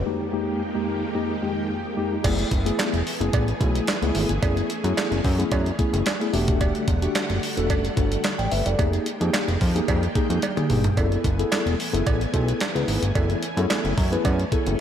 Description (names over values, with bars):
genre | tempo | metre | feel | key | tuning
early-eighties boogie funk | 110 BPM | 4/4 | straight | unclear | A4 = 441 Hz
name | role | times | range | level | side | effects
mellow tine electric piano | accompaniment | 0.0-14.8 s | F2 to G5 | -26 LUFS | left 2 dB | medium stereo tremolo, slapback echo
string machine, full ensemble | sustained chords | 0.0-14.8 s | F2 to G#5 | -31 LUFS | right 1 dB | ensemble chorus
fat analog bass | bass | 0.0-14.8 s | E1 to F#2 | -24 LUFS | equal | none
crisp 8-bit digital drum machine | drums | 2.2-14.8 s | crash cymbal, handclaps, hi-hat, kick drum, snare drum, toms | -25 LUFS | equal | none
cowbell | percussion | 2.2-14.4 s | none | -32 LUFS | right 7 dB | slapback echo
room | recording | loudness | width
moderate lush hall reverb, RT60 1.9 s | big arena sound | -21 LUFS | side -9 dB against mid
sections
0.0-2.2 A section; 2.2-14.8 B section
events
break 0.1-2.2; drum fill 10.4-11.0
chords
0.1 Fm11; 2.2 F#m11; 6.3 Em11; 8.8 Fm11; 11.0 F#m11